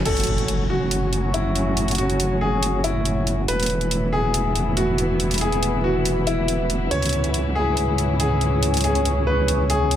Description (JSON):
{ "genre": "heavy wobble dubstep", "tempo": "140 BPM", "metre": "4/4", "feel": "half-time", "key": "F# minor", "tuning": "A4 = 441 Hz", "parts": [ { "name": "warm chamber string section", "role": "sustained chords", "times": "0.0-10.0 s", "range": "G#2 to F#4", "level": "-27 LUFS", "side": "right 1 dB", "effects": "low-pass filter" }, { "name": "wobble bass", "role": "bass", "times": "0.0-10.0 s", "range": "E1 to C#2", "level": "-23 LUFS", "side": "equal", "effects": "chorus, overdrive" }, { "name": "deep dark ambient pad", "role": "texture", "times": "0.0-10.0 s", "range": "C#4 to C#6", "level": "-29 LUFS", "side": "left 1 dB", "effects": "chorus, built-in reverb" }, { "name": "clear concert grand piano", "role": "melody", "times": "0.1-10.0 s", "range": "E4 to C#5", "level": "-24 LUFS", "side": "left 2 dB", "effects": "ping-pong delay" }, { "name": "dubstep drum kit", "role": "drums", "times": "0.1-10.0 s", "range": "crash cymbal, hi-hat", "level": "-27 LUFS", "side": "right 1 dB", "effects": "none" }, { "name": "impact", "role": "sound effects", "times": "0.1-1.8 s", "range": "none", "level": "-29 LUFS", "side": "equal", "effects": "none" } ], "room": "light reverb, digital ambience", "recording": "none", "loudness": "-19 LUFS", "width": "side -10 dB against mid", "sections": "0.1-10.0 A section", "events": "impact 0.1-1.8; filter sweep on string section 0.1-10.0", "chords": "0.1 F#m; 3.5 Esus4; 6.9 C#m" }